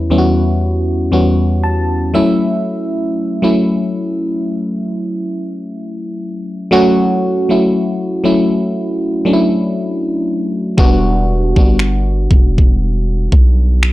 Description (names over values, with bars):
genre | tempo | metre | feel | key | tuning
contemporary R&B | 59 BPM | 4/4 | swing 54% on 16ths | unclear | A4 = 441 Hz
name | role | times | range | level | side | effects
FM electric piano | accompaniment | 0.0-13.9 s | E2 to A5 | -14 LUFS | equal | chorus
long sustained 808-style bass | bass | 10.8-13.9 s | E1 to B1 | -14 LUFS | equal | none
trap drum kit | drums | 10.8-13.9 s | finger snaps, kick drum | -10 LUFS | equal | none
room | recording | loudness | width
little or no reverb | dry, gritty hardware recording, transformer saturation, cassette tape | -12 LUFS | side -16 dB against mid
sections
0.0-13.9 A section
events
FM electric piano fill 1.1-2.6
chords
0.0 Em69; 2.1 F#m7; 10.8 Em9